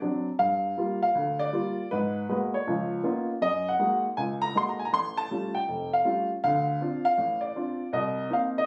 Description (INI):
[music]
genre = solo jazz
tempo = 159 BPM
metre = 4/4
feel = swing 65% on 8ths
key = unclear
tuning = A4 = 440 Hz
[part]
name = warm baby grand piano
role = solo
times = 0.0-8.7 s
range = E#1 to C6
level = -28 LUFS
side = equal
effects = none
[sound]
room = moderate studio ambience, RT60 0.5 s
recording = recorded on a phone in the room, studio reverb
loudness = -28 LUFS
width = mono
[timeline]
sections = 0.0-8.7 A section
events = none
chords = 0.4 Gm7; 1.9 Abm9; 2.7 Db13; 3.4 Gb69; 4.9 Aaug7; 6.4 Dm7; 7.9 Cm7